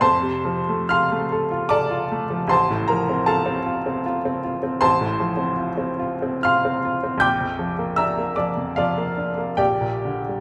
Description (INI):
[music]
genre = classical, romantic character piece for solo piano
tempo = 63-82 BPM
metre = 3/4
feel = rubato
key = F major from 4.8 s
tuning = A4 = 439 Hz
[part]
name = bright upright piano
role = solo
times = 0.0-10.4 s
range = A1 to G6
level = -22 LUFS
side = equal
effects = none
[sound]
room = wet recital hall reverb, RT60 1.4 s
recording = recorded in a church or concert hall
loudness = -22 LUFS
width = mono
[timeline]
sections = 0.0-10.4 A section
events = none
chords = 0.0 F; 2.5 F/A; 7.2 Bb6; 9.6 Gm/Bb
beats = | 0.02 0.92 1.72 | 2.51 3.28 4.06 | 4.83 5.58 6.43 | 7.22 7.99 8.78 | 9.59